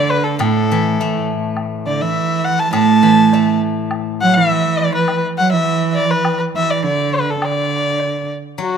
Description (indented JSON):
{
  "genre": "chinese traditional, Chinese chamber ensemble",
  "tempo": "103 BPM",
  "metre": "2/4",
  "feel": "straight",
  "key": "unclear",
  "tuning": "A4 = 437 Hz",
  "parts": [
    { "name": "rich erhu", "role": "melody", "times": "0.0-8.8 s", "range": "F#4 to A5", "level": "-17 LUFS", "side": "left 3 dB", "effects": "none" },
    { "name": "warm cello", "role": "second line", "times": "0.0-8.3 s", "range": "A2 to A3", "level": "-17 LUFS", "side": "right 7 dB", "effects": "none" },
    { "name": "steel-string zither", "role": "accompaniment", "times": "0.4-4.5, 8.6-8.8 s", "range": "A2 to A3", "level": "-21 LUFS", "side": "left 4 dB", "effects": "none" },
    { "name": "woodblock", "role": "percussion", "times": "0.4-8.1 s", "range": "none", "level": "-27 LUFS", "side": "left 1 dB", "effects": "none" }
  ],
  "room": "light reverb",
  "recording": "close, detailed microphones",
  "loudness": "-14 LUFS",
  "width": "side -7 dB against mid",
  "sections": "0.0-8.6 A section",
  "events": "none",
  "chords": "none",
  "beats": "| 0.41 0.99 | 1.57 2.15 | 2.73 3.32 | 3.91 4.50 | 5.09 5.67 | 6.25 6.84 | 7.42 8.00 | 8.60"
}